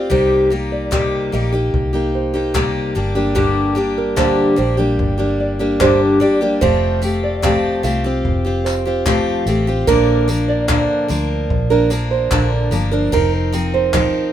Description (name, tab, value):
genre	acoustic pop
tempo	74 BPM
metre	4/4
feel	straight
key	Bb major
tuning	A4 = 440 Hz
part	picked steel-string acoustic guitar	accompaniment	0.0-14.3 s	G2 to Bb4	-17 LUFS	left 1 dB	none
part	vintage muted fingered electric bass	bass	0.0-14.1 s	F1 to D2	-21 LUFS	equal	none
part	nylon-string guitar	arpeggios	0.1-14.3 s	G4 to F5	-20 LUFS	right 6 dB	none
part	jazz brush drum kit	drums	0.1-14.1 s	crash cymbal, handclaps, kick drum, tambourine	-22 LUFS	left 1 dB	none
room	little or no reverb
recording	minimal, uncompressed stereo recording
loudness	-14 LUFS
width	side -10 dB against mid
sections	0.0-9.9 A section; 9.9-14.3 B section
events	none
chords	0.1 Cm7; 3.0 Gm; 6.6 Fadd9; 9.9 Bb; 13.1 F7sus4